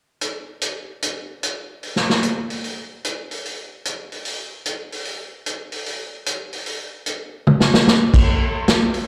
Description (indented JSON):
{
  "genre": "jazz",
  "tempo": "149 BPM",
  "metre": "4/4",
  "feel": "swing 66% on 8ths",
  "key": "none",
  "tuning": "none",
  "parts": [
    { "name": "vintage drum kit", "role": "drums", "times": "0.2-9.0 s", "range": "crash cymbal, hi-hat, kick drum, snare drum, toms", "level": "-21 LUFS", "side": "equal", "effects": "none" }
  ],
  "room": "moderate plate reverb, RT60 1.4 s",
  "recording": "live gig heard through the venue's PA, recital hall reverb",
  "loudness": "-22 LUFS",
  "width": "mono",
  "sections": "0.2-1.8 A section; 1.8-8.3 B section",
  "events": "drum fill 7.5-7.9",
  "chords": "none",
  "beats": "| 0.21 0.61 1.01 1.42 | 1.82 2.23 2.63 3.03 | 3.44 3.84 4.25 4.65 | 5.05 5.46 5.86 6.26 | 6.67 7.07 7.47 7.88 | 8.28 8.68"
}